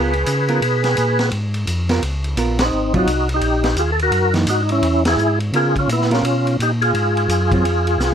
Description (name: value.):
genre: soul jazz organ trio.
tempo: 171 BPM.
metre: 4/4.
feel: swing 62% on 8ths.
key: Db mixolydian.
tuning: A4 = 440 Hz.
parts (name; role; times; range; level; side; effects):
percussive tonewheel organ; melody; 0.0-8.1 s; Cb4 to Cb5; -18 LUFS; equal; slow rotary speaker, overdrive, chorus vibrato.
hollow-body jazz guitar; accompaniment; 0.0-7.6 s; Fb3 to Bb4; -21 LUFS; right 3 dB; none.
mellow tonewheel organ; bass; 0.0-8.1 s; Ab1 to Db3; -20 LUFS; equal; slow rotary speaker.
vintage drum kit; drums; 0.1-8.1 s; hi-hat, kick drum, ride cymbal, snare drum; -25 LUFS; equal; none.
room: light reverb.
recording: close, detailed microphones.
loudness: -15 LUFS.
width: side -8 dB against mid.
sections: 0.0-8.1 A section.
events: band accent 2.5, 5.0; drum fill 8.0.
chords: 0.0 Db6; 2.7 Ab9; 4.1 Gb13; 5.5 Db13; 6.9 Ab6.